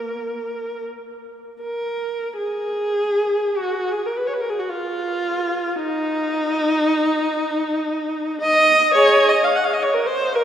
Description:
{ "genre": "classical, free, expressive piece for unaccompanied viola", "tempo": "34-58 BPM", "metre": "3/4", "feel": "rubato", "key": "Eb minor", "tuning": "A4 = 440 Hz", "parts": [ { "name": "rich viola", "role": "solo", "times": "0.0-10.4 s", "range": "Bb3 to Gb5", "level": "-18 LUFS", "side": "equal", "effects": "none" } ], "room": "wet cathedral reverb, RT60 5.4 s", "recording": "heard from further back in the room", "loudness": "-18 LUFS", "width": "side -10 dB against mid", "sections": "0.0-2.4 A section; 2.4-10.4 B section", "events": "none", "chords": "none" }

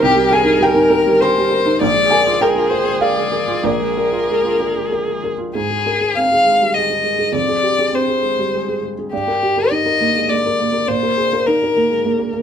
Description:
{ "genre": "neoclassical piano and strings", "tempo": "101 BPM", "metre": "3/4", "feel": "rubato", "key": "unclear", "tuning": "A4 = 440 Hz", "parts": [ { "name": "warm violin", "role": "melody", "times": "0.0-12.3 s", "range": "G4 to F5", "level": "-16 LUFS", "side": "left 3 dB", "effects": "none" }, { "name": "dark viola", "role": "accompaniment", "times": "0.0-5.3 s", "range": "Ab4 to Bb4", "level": "-21 LUFS", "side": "right 4 dB", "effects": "none" }, { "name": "felt-muted upright piano", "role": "accompaniment", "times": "0.0-12.4 s", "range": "Bb1 to C6", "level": "-18 LUFS", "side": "right 2 dB", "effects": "none" } ], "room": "moderate studio reverb, RT60 0.6 s", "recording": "band playing live in one room", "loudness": "-14 LUFS", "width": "side -8 dB against mid", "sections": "0.0-5.5 A section; 5.5-12.4 B section", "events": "none", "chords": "0.0 Cm7; 1.8 Bb7; 5.5 Abadd9; 7.3 Fmadd9; 9.1 Ebmaj7/G; 10.9 Bb7sus4" }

